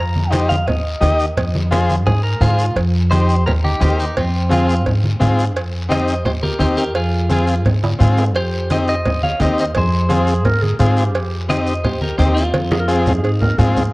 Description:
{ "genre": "latin, cumbia", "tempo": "172 BPM", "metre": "4/4", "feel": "straight", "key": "F minor", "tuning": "A4 = 440 Hz", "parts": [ { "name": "clean electric guitar", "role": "melody", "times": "0.0-13.5 s", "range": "C4 to Bb5", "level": "-22 LUFS", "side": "equal", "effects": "none" }, { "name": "upright bass", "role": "bass", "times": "0.0-13.9 s", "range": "Eb2 to Ab2", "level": "-17 LUFS", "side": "equal", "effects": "none" }, { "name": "congas", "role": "percussion", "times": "0.2-13.8 s", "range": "none", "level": "-22 LUFS", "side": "equal", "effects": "none" }, { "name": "overdriven combo organ", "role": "accompaniment", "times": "0.3-13.8 s", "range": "C4 to Eb5", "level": "-21 LUFS", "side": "left 2 dB", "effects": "none" }, { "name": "cowbell and timbales", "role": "percussion", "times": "0.3-13.8 s", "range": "none", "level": "-26 LUFS", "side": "right 2 dB", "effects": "none" }, { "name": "guiro", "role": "percussion", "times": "0.3-13.9 s", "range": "none", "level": "-35 LUFS", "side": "left 2 dB", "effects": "none" }, { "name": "mellow clarinet", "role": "second line", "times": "10.1-13.9 s", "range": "G4 to Bb4", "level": "-24 LUFS", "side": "right 2 dB", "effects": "none" } ], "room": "light reverb, small room ambience", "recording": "cassette tape", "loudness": "-14 LUFS", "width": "side -22 dB against mid", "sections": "0.0-2.8 A section; 2.8-13.9 B section", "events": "clean electric guitar solo 0.0-2.8; drum fill 7.8-8.4, 12.5-13.9", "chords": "0.0 Cm/F; 1.4 Fm; 2.8 Cm/F; 4.2 Fm; 5.6 Cm/F; 7.0 Fm; 8.4 Cm/F; 9.8 Fm; 11.1 Cm/F; 12.5 Fm" }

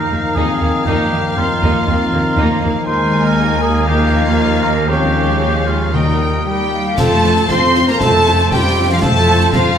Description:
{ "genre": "cinematic, heroic adventure film score", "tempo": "118 BPM", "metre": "4/4", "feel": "straight", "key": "Eb major", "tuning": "A4 = 437 Hz", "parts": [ { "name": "rich studio violin section", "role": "melody", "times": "0.0-9.8 s", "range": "F5 to C6", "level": "-20 LUFS", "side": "left 1 dB", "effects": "none" }, { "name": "clear clarinet", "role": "second line", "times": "0.0-9.8 s", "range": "G3 to F4", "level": "-24 LUFS", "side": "left 1 dB", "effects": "none" }, { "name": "mellow oboe", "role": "second line", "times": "0.0-9.8 s", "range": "Eb4 to C5", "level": "-22 LUFS", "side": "right 1 dB", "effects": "none" }, { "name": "dark French horn section", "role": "sustained chords", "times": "0.0-9.8 s", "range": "F3 to F4", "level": "-25 LUFS", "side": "left 3 dB", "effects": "none" }, { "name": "concert harp", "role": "arpeggios", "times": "0.0-9.8 s", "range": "F2 to Eb5", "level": "-24 LUFS", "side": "left 6 dB", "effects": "none" }, { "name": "mellow trumpet", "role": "stabs", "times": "0.0-9.8 s", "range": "F4 to Db5", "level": "-21 LUFS", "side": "right 2 dB", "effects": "none" }, { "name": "rich symphonic violin section", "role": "second line", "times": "0.1-9.8 s", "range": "G3 to C5", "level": "-24 LUFS", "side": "left 3 dB", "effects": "none" }, { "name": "warm symphonic viola section", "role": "accompaniment", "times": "0.1-9.6 s", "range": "Ab3 to F4", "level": "-24 LUFS", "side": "right 1 dB", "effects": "none" }, { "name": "clear symphonic cello section", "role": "bass", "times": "0.1-9.8 s", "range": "Eb2 to C4", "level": "-21 LUFS", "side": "right 1 dB", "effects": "none" }, { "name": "warm studio double bass section", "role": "bass", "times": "0.1-9.8 s", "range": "Eb2 to F2", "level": "-20 LUFS", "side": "right 2 dB", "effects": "none" }, { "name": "timpani", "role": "percussion", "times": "5.9-6.7 s", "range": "Eb3", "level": "-22 LUFS", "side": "left 2 dB", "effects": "none" }, { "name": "large flute ensemble", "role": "second line", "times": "6.5-9.8 s", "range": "F5 to C6", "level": "-23 LUFS", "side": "left 1 dB", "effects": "none" }, { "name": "concert snare drum, clash cymbals and concert bass drum", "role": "drums", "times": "7.0-9.7 s", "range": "none", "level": "-20 LUFS", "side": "equal", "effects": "none" } ], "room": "wet recital hall reverb, RT60 1.5 s", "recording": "recorded in a church or concert hall", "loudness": "-12 LUFS", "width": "side -8 dB against mid", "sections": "0.0-7.0 A section; 7.0-9.8 B section", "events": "none", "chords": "0.0 Bbsus4/Eb; 2.9 Absus2/Eb; 3.9 Ebsus2; 4.9 Db/Eb; 5.9 Eb; 7.0 F" }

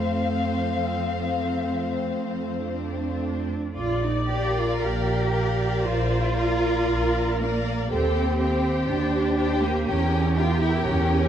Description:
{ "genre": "classical, slow romantic movement for string orchestra", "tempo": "51-62 BPM", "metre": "4/4", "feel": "rubato", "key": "Bb major", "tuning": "A4 = 438 Hz", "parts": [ { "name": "dark studio violin section", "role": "melody", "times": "0.0-11.3 s", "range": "F5 to G5", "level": "-33 LUFS", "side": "left 6 dB", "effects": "none" }, { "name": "rich studio violin section", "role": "second line", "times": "0.0-11.3 s", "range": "C4 to D5", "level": "-30 LUFS", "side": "left 3 dB", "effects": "none" }, { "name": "rich studio viola section", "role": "accompaniment", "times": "0.0-11.3 s", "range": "A3 to D5", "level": "-30 LUFS", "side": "right 1 dB", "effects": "none" }, { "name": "clear chamber double bass section", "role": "bass", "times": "0.0-11.3 s", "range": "Bb1 to F2", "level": "-26 LUFS", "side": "right 1 dB", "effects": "none" }, { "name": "warm chamber cello section", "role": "bass", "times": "0.0-11.3 s", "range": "F3 to G4", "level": "-27 LUFS", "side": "right 2 dB", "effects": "none" } ], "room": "moderate scoring stage reverb, RT60 1.5 s", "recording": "dark, warm production", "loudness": "-22 LUFS", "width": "side -9 dB against mid", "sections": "0.0-3.8 A section; 3.8-11.3 B section", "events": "none", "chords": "0.0 F; 3.8 Bb; 7.9 Cm/Eb; 9.9 Edim7" }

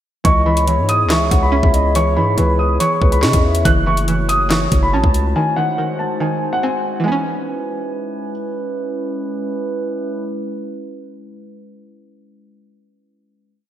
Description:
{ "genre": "hip hop, drill", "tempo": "141 BPM", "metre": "4/4", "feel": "half-time", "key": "C# minor", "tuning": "A4 = 441 Hz", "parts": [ { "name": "dark concert grand piano", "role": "melody", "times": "0.2-8.3 s", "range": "F#5 to F#6", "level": "-20 LUFS", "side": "right 1 dB", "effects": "lush chorus, low-pass filter, tape echo" }, { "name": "hollow clarinet-like synth lead", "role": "second line", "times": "0.2-3.6 s", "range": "B4 to F#5", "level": "-23 LUFS", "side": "left 2 dB", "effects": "chorus, tape echo" }, { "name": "string-like resonator pluck", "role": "accompaniment", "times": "0.2-10.3 s", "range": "D#3 to C#4", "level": "-22 LUFS", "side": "right 2 dB", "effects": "chorus, low-pass filter" }, { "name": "glass harmonica", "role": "sustained chords", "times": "0.2-10.2 s", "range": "G#3 to C#5", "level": "-24 LUFS", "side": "equal", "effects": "none" }, { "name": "distorted 808-style bass", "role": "bass", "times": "0.2-5.3 s", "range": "F#1 to C#3", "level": "-18 LUFS", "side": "equal", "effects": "distortion" }, { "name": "drill drum kit", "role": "drums", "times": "0.2-5.2 s", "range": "handclaps, hi-hat, kick drum, snare drum", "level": "-17 LUFS", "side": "equal", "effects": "none" } ], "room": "wet lush hall reverb, RT60 2.1 s", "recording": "dreamy mix soaked in reverb", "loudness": "-15 LUFS", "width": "side -11 dB against mid", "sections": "0.2-7.1 hook; 7.1-10.5 final chord", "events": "none", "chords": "0.2 C#m7; 3.7 F#m7; 5.4 G#7; 7.1 C#m7" }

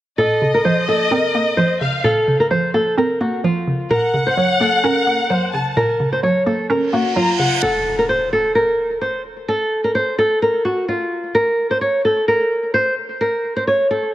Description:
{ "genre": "hip hop", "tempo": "129 BPM", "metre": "4/4", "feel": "half-time", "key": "Bb harmonic minor", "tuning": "A4 = 437 Hz", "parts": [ { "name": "flamenco guitar", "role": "melody", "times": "0.2-14.1 s", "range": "F4 to Db5", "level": "-17 LUFS", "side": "equal", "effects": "low-pass filter, tape echo" }, { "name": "dark studio violin section", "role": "second line", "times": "0.2-7.6 s", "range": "Eb5 to Bb5", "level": "-20 LUFS", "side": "left 2 dB", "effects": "tape echo" }, { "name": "hollow square pluck", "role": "accompaniment", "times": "0.2-7.6 s", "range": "Bb2 to Db4", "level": "-20 LUFS", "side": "right 2 dB", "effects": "chorus, low-pass filter" }, { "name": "reverse cymbal and impact", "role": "sound effects", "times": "6.9-9.5 s", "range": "none", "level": "-26 LUFS", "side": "right 3 dB", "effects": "none" } ], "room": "light reverb, small room reverb", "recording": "none", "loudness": "-15 LUFS", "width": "side -14 dB against mid", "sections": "0.2-7.6 A section; 7.6-14.1 B section", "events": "reverse cymbal 6.9-7.6; impact 7.6-9.5", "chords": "0.2 Bbmadd9; 3.9 Gb/Bb; 7.6 N.C." }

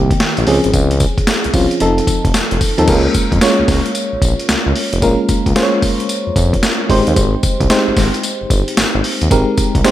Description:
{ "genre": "R&B, new jack swing", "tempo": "112 BPM", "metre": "4/4", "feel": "swing 64% on 16ths", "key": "unclear", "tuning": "A4 = 440 Hz", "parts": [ { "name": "FM electric piano with auto-pan", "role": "accompaniment", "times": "0.0-9.9 s", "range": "Eb3 to Db5", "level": "-16 LUFS", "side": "equal", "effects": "none" }, { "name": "smooth synth bass", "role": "bass", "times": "0.0-9.8 s", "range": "F1 to F2", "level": "-17 LUFS", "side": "equal", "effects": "none" }, { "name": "boom bap sampler-style drum kit", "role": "drums", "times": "0.1-9.9 s", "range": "crash cymbal, hi-hat, kick drum, snare drum, tambourine", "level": "-16 LUFS", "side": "equal", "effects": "none" } ], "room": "light reverb", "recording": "none", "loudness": "-12 LUFS", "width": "side -13 dB against mid", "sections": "0.0-2.9 A section; 2.9-9.9 B section", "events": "none", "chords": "0.5 Dbmaj7; 1.8 F7; 2.9 Db6; 5.0 Bbm7; 6.9 Abmaj7" }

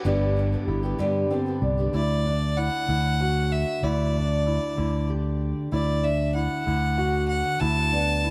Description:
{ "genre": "folk", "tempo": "63 BPM (dotted quarters)", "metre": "6/8", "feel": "straight", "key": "D major", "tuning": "A4 = 440 Hz", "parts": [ { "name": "fingerpicked steel-string acoustic guitar", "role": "accompaniment", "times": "0.0-8.3 s", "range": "D2 to G4", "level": "-33 LUFS", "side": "equal", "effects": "none" }, { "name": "picked swing-style acoustic guitar", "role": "accompaniment", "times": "0.0-1.9 s", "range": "G2 to G4", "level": "-33 LUFS", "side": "equal", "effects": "none" }, { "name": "dark upright piano", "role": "arpeggios", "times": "0.0-8.3 s", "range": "C4 to F#4", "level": "-32 LUFS", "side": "equal", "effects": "none" }, { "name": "fingered electric bass", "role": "bass", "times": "0.0-8.3 s", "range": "G1 to G2", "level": "-28 LUFS", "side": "equal", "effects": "none" }, { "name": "clear fiddle", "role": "melody", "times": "1.9-8.3 s", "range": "D5 to A5", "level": "-30 LUFS", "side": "equal", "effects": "tape echo" } ], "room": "light reverb", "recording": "none", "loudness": "-25 LUFS", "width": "mono", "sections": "0.0-1.9 A section; 1.9-8.3 B section", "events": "none", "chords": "0.0 G; 1.9 Dadd9; 3.8 G5/D; 5.7 Dadd9; 7.6 Bm7/D" }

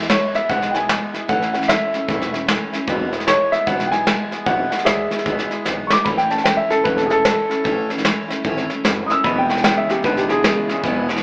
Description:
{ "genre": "rockabilly", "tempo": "151 BPM", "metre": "4/4", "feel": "swing 63% on 8ths", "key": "E major", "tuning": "A4 = 439 Hz", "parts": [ { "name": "picked steel-string acoustic guitar", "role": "accompaniment", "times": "0.0-11.2 s", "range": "E2 to E4", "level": "-25 LUFS", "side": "equal", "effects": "none" }, { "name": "upright bass", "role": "bass", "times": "0.0-11.2 s", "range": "E1 to E2", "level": "-28 LUFS", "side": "equal", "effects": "none" }, { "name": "soft brush drum kit", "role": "drums", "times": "0.0-11.2 s", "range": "hi-hat, kick drum, snare drum", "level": "-20 LUFS", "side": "equal", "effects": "none" }, { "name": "dark upright piano", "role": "melody", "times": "0.1-11.1 s", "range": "G4 to E6", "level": "-19 LUFS", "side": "equal", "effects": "none" }, { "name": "electric guitar at the edge of break-up", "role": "riff", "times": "9.2-11.2 s", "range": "E2 to D3", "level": "-23 LUFS", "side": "equal", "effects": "none" } ], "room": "moderate large studio reverb, RT60 1.4 s", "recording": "band playing live in one room, AM radio sound", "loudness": "-16 LUFS", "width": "side -34 dB against mid", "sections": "0.0-11.2 A section", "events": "drum fill 5.7-6.1", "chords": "0.0 E; 1.3 A; 2.9 E; 6.1 A; 9.2 E" }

